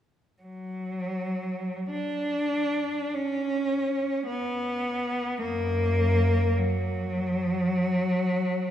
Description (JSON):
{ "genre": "classical, free, expressive piece for unaccompanied cello", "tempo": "38-53 BPM", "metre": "4/4", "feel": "rubato", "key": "unclear", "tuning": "A4 = 439 Hz", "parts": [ { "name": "rich cello", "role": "solo", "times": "0.4-8.7 s", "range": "F#2 to D4", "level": "-25 LUFS", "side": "equal", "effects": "none" } ], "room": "wet church reverb, RT60 2.6 s", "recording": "none", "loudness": "-25 LUFS", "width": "side -10 dB against mid", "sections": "0.4-8.7 A section", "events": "none", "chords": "none" }